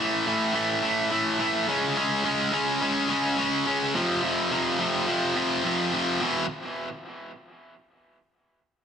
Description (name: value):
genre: rock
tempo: 106 BPM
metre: 4/4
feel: straight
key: unclear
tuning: A4 = 441 Hz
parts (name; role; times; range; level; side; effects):
- distorted electric guitar; solo; 0.0-6.5 s; E2 to C#4; -23 LUFS; equal; overdrive, tape echo
room: moderate large studio reverb, RT60 1.1 s, digital ambience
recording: dense, heavily limited modern master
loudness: -23 LUFS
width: side -8 dB against mid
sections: 0.0-6.2 A section; 6.2-8.5 B section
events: none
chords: 0.0 A5; 1.7 C#5; 3.9 F5; 6.2 E5